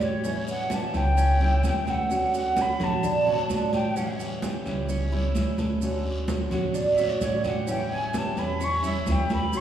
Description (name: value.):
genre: latin, Cuban son and guajira.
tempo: 129 BPM.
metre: 4/4.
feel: straight.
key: unclear.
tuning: A4 = 441 Hz.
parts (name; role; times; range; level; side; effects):
jazz flute; melody; 0.0-9.6 s; C#5 to C#6; -28 LUFS; equal; none.
nylon-string guitar; accompaniment; 0.0-9.6 s; D3 to F#4; -30 LUFS; right 1 dB; none.
Cuban tres; arpeggios; 0.0-9.6 s; C#4 to A4; -31 LUFS; right 4 dB; none.
upright bass; bass; 0.0-9.6 s; A1 to E2; -28 LUFS; equal; none.
congas; percussion; 0.0-9.6 s; none; -31 LUFS; right 1 dB; none.
guiro; percussion; 0.0-9.6 s; none; -42 LUFS; left 1 dB; none.
maracas; percussion; 0.0-9.6 s; none; -46 LUFS; right 5 dB; none.
room: wet concert hall reverb, RT60 2.0 s.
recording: recorded in a church or concert hall, small room ambience.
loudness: -23 LUFS.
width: side -10 dB against mid.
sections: 0.0-9.6 A section.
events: flute solo 0.0-9.6.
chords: 0.2 A7; 2.1 Dmaj7; 4.0 A7; 5.8 Dmaj7; 7.7 A7.